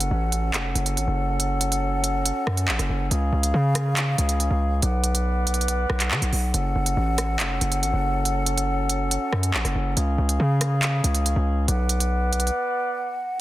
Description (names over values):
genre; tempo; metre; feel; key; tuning
hip hop, drill; 140 BPM; 4/4; half-time; F# harmonic minor; A4 = 440 Hz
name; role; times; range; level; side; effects
concert harp; melody; 0.0-1.3 s; B4 to C#5; -49 LUFS; left 1 dB; none
warm woodwind section; sustained chords; 0.0-13.4 s; C#3 to F#5; -27 LUFS; equal; none
hard-hitting 808-style bass; bass; 0.0-12.5 s; E#1 to D3; -23 LUFS; equal; none
drill drum kit; drums; 0.0-12.5 s; handclaps, hi-hat, rim click; -26 LUFS; right 2 dB; none
room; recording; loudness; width
light reverb, small room ambience; dense, heavily limited modern master; -21 LUFS; side -16 dB against mid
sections
0.0-13.4 A section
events
break 12.5-13.4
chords
0.0 F#m; 3.1 C#; 4.8 Bm; 6.5 F#m; 10.0 C#; 11.7 Bm